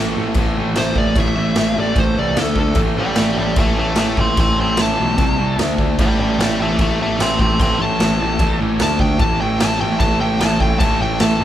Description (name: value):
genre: garage rock duo or trio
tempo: 149 BPM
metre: 4/4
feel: straight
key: A minor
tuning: A4 = 441 Hz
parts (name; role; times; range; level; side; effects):
- fuzz guitar; riff; 0.0-11.4 s; A2 to D4; -20 LUFS; equal; distortion
- overdriven picked electric bass; bass; 0.0-11.4 s; A1 to D2; -23 LUFS; equal; tube saturation
- raw garage drum kit; drums; 0.3-11.3 s; crash cymbal, kick drum, snare drum; -19 LUFS; equal; none
- fuzz lead guitar; melody; 0.8-11.4 s; A4 to C6; -21 LUFS; equal; distortion
room: moderate large studio reverb, RT60 1.1 s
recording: band playing live in one room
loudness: -14 LUFS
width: side -11 dB against mid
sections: 0.0-11.4 A section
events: lead electric guitar solo 0.0-11.4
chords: 0.0 A5; 2.4 D5; 2.8 A5; 5.2 C5; 5.6 D5; 6.0 A5; 8.8 D5; 9.2 A5